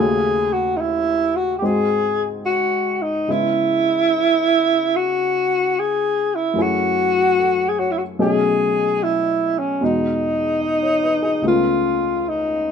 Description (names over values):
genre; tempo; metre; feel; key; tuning
jazz ballad; 73 BPM; 4/4; swing 67% on 8ths; unclear; A4 = 439 Hz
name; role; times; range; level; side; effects
breathy alto saxophone; melody; 0.0-12.7 s; C#4 to G#4; -18 LUFS; equal; none
warm upright piano; accompaniment; 0.0-12.7 s; C#2 to D#5; -24 LUFS; left 1 dB; none
room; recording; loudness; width
light reverb; minimal, uncompressed stereo recording; -17 LUFS; side -7 dB against mid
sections
0.0-12.7 A section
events
none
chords
0.0 D#m7b5; 1.6 G#7; 3.3 C#m9; 6.6 F#m7; 8.2 B13; 9.8 Emaj9; 11.4 C#7b13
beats
0.78 1.61 2.44 | 3.27 4.10 4.92 5.74 | 6.56 7.37 8.18 8.99 | 9.81 10.62 11.43 12.25